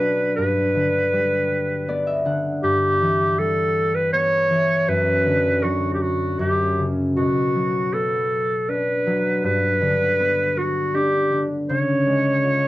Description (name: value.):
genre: children's music, lullaby.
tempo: 80 BPM.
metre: 3/4.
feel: straight.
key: unclear.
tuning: A4 = 440 Hz.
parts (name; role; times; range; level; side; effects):
clear clarinet; melody; 0.0-12.7 s; F#4 to C#5; -20 LUFS; equal; none.
concert harp; accompaniment; 0.0-12.7 s; F#2 to F#5; -23 LUFS; left 1 dB; none.
room: moderate studio reverb, RT60 0.6 s.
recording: worn, warbling old tape, cassette tape, warbly pitch drift.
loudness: -18 LUFS.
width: side -16 dB against mid.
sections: 0.0-12.7 A section.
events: harp fill 1.5-2.6.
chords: 0.4 G; 2.6 Em/G; 4.9 Bm/F#; 6.4 F#5; 7.2 Bm; 9.4 G; 11.7 C#.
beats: | 0.38 1.14 1.89 | 2.64 3.38 4.13 | 4.88 5.63 6.40 | 7.17 7.94 8.69 | 9.45 10.20 10.94 | 11.69 12.44.